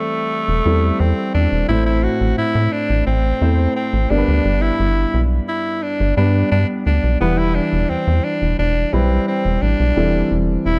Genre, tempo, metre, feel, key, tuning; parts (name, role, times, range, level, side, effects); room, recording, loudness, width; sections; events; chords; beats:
1980s-style pop; 87 BPM; 4/4; straight; A minor; A4 = 439 Hz
raspy tenor saxophone; melody; 0.0-10.8 s; A3 to F#4; -23 LUFS; equal
dark concert grand piano; accompaniment; 0.0-10.8 s; G2 to C5; -24 LUFS; equal
rubbery square bass; bass; 0.5-10.8 s; E1 to A2; -20 LUFS; equal
light reverb, small room ambience; dark, warm production; -18 LUFS; mono
0.0-10.8 A section
0.0 C6/E; 1.7 Am; 4.1 G; 7.2 Em; 10.0 C6/E
0.31 1.00 | 1.69 2.38 3.07 3.76 | 4.45 5.14 5.83 6.52 | 7.21 7.90 8.59 9.28 | 9.97 10.66